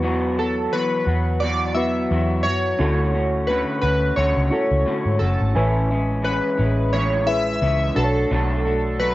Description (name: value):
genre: indie pop, bedroom pop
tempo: 87 BPM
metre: 4/4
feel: swing 55% on 16ths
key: A major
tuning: A4 = 440 Hz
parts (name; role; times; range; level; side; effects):
- electric guitar through a small old amp; accompaniment; 0.0-9.1 s; A2 to F#4; -25 LUFS; left 1 dB; wide subtle chorus, warbly pitch drift
- reed electric piano; accompaniment; 0.0-9.1 s; B3 to G#5; -27 LUFS; right 1 dB; cassette tape
- vintage muted picked electric bass; bass; 0.0-9.1 s; F#1 to G#2; -22 LUFS; equal; none
- chorused retro synth keys; melody; 0.4-9.1 s; A4 to E5; -23 LUFS; left 1 dB; lush chorus, slapback echo
room: light reverb, digital ambience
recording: worn, warbling old tape, cassette tape, warbly pitch drift, nothing above 7.7 kHz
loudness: -18 LUFS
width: side -16 dB against mid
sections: 0.0-9.1 A section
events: none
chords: 0.0 Esus2; 2.8 Dmaj7; 5.5 Amaj7; 8.0 Bm7